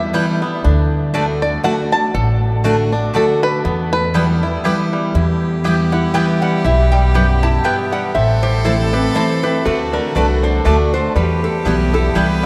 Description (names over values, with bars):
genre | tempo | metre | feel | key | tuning
bluegrass | 120 BPM | 3/4 | swing 56% on 8ths | E minor | A4 = 442 Hz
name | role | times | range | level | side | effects
bluegrass banjo | melody | 0.0-12.5 s | G3 to A5 | -24 LUFS | equal | none
picked steel-string acoustic guitar | accompaniment | 0.0-12.5 s | E2 to F#4 | -21 LUFS | equal | none
upright bass | bass | 0.0-12.5 s | A1 to E2 | -20 LUFS | equal | none
mandolin | stabs | 0.1-12.3 s | A3 to A5 | -28 LUFS | equal | none
clear fiddle | second line | 5.1-12.5 s | F#4 to B4 | -27 LUFS | equal | none
lap resonator guitar | melody | 5.9-12.4 s | F#4 to A5 | -24 LUFS | equal | none
room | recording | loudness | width
wet cathedral reverb, RT60 6.9 s | in a vast, echoing space | -16 LUFS | mono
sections
0.0-5.1 A section; 5.1-12.5 B section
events
five-string banjo solo 0.0-5.1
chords
0.0 Em; 0.6 D; 3.6 Em; 8.2 Am; 9.7 D; 11.2 Em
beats
0.14 | 0.65 1.15 1.65 | 2.15 2.65 3.15 | 3.65 4.15 4.65 | 5.15 5.65 6.15 | 6.65 7.15 7.65 | 8.15 8.65 9.15 | 9.65 10.15 10.65 | 11.15 11.65 12.16